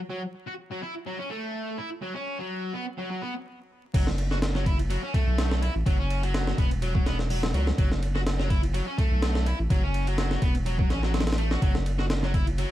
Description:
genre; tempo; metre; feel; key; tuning
breakbeat, breaks; 125 BPM; 4/4; swing 54% on 16ths; F# minor pentatonic; A4 = 441 Hz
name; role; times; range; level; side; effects
fuzz guitar; riff; 0.1-12.7 s; F#3 to F#4; -32 LUFS; equal; distortion, dub echo
saturated sub bass; bass; 3.9-12.7 s; E1 to C#2; -26 LUFS; equal; none
breakbeat sampler-style drum kit; drums; 3.9-12.7 s; crash cymbal, hi-hat, kick drum, ride cymbal, snare drum; -26 LUFS; equal; none
room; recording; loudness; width
little or no reverb; dark, warm production, vinyl crackle; -24 LUFS; side -14 dB against mid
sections
0.0-3.9 A section; 3.9-12.7 B section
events
stop 3.5-3.9; drop 3.9-12.7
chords
0.0 F#m; 3.9 F#m7

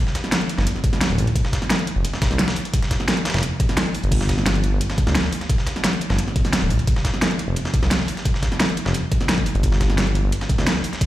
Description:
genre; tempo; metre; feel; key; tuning
liquid drum and bass; 174 BPM; 4/4; straight; unclear; A4 = 440 Hz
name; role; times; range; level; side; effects
dusty soul sampler-style drum kit; drums; 0.1-11.1 s; hi-hat, snare drum; -28 LUFS; equal; high-pass filter on snare, high-pass filter on hats
pop drum kit; drums; 0.1-11.1 s; crash cymbal, hi-hat, snare drum; -23 LUFS; equal; overdrive
smooth synth bass; bass; 0.6-10.7 s; D1 to D2; -20 LUFS; equal; none
electronic kick drum; drums; 0.8-11.1 s; none; -20 LUFS; equal; overdrive
room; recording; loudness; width
light reverb, digital ambience; played on a big sound system in a bare room, large studio reverb; -18 LUFS; side -14 dB against mid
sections
0.0-11.1 A section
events
none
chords
none

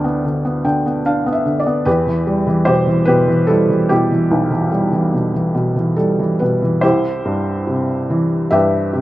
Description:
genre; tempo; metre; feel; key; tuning
classical, lyrical solo piano; 72 BPM; 3/4; rubato; unclear; A4 = 440 Hz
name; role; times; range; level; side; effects
felt-muted upright piano; solo; 0.0-9.0 s; B1 to G5; -14 LUFS; equal; none
room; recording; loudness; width
light reverb; close, detailed microphones; -14 LUFS; side -15 dB against mid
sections
0.0-6.8 A section; 6.8-9.0 B section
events
felt piano fill 0.2-1.9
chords
0.0 G; 1.9 Em; 6.8 Cmaj7

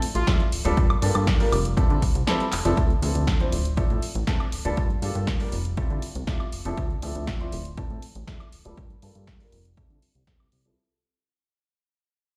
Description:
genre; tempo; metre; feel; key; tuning
filtered disco house; 120 BPM; 4/4; straight; D minor; A4 = 440 Hz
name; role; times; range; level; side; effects
punchy analog drum machine; drums; 0.0-10.7 s; handclaps, hi-hat, snare drum, woodblock; -33 LUFS; equal; overdrive, sidechain pumping on hats, sidechain pumping on perc
plucky analog bass; bass; 0.2-10.7 s; D1 to D3; -30 LUFS; equal; sidechain pumping, low-pass filter
warm baby grand piano; accompaniment; 0.3-10.8 s; F3 to C5; -32 LUFS; equal; phaser, sidechain pumping, low-pass filter
electronic kick drum; drums; 0.3-10.4 s; none; -26 LUFS; equal; overdrive
room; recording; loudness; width
light reverb, digital ambience; played on a big sound system in a bare room, stone room reverb; -24 LUFS; mono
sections
0.0-2.8 A section; 2.8-10.8 B section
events
drop 0.0-2.8; kick drops out 2.3-2.8; drum fill 2.5; fade-out 2.8-10.8; filter sweep 2.8-10.8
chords
0.0 Dm9; 0.8 Gm9; 1.8 Fmaj9; 2.8 Dm9; 4.8 Gm9; 5.8 Fmaj9; 6.8 Dm9; 8.8 Gm9; 9.8 Fmaj9

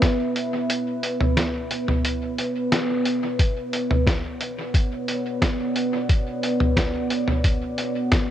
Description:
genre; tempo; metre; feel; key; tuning
ambient dub; 89 BPM; 4/4; straight; B minor; A4 = 441 Hz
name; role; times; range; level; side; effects
deep dark ambient pad; sustained chords; 0.0-8.3 s; B3 to F#5; -24 LUFS; right 1 dB; chorus, built-in reverb, cassette tape
electronic kick drum; drums; 0.0-8.3 s; none; -21 LUFS; equal; cassette tape
lo-fi sampler-style drum kit; drums; 0.0-8.3 s; hi-hat, snare drum, toms; -24 LUFS; equal; cassette tape, dub echo
room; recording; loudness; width
light reverb; home recording on cassette; -21 LUFS; side -11 dB against mid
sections
0.0-3.4 A section; 3.4-8.3 B section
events
kick drops out 0.7-3.4; band accent 2.7-3.1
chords
0.0 Bsus2; 3.4 Bmadd9

